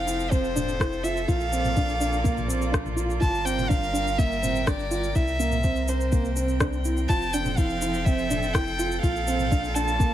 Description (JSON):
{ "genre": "piano and strings electronica", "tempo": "124 BPM", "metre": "4/4", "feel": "straight", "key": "unclear", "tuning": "A4 = 438 Hz", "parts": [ { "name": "dark violin", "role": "melody", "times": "0.0-10.1 s", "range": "C5 to A5", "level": "-29 LUFS", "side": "equal", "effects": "none" }, { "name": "rich string quartet", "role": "sustained chords", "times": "0.0-10.1 s", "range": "C3 to G5", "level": "-33 LUFS", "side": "right 2 dB", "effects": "none" }, { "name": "warm sub bass", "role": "bass", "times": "0.0-10.1 s", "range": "F1 to C2", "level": "-30 LUFS", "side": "left 1 dB", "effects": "sidechain pumping" }, { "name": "felt-muted upright piano", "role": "riff", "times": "0.1-10.1 s", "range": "Bb3 to F4", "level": "-29 LUFS", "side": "right 2 dB", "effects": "none" }, { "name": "organic electronic drum kit", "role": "drums", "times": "0.1-10.1 s", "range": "rim click, shaker, toms", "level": "-32 LUFS", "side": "left 1 dB", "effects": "none" }, { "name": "electronic kick drum", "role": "drums", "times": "0.3-10.1 s", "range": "none", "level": "-24 LUFS", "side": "left 1 dB", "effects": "none" } ], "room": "light reverb, digital ambience", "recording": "none", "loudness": "-22 LUFS", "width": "side -12 dB against mid", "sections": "0.0-10.1 A section", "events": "none", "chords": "0.0 Fmaj7; 1.3 Bbmaj7; 3.2 Gm7; 5.2 C7; 7.1 Fmaj7; 9.0 Bbmaj7" }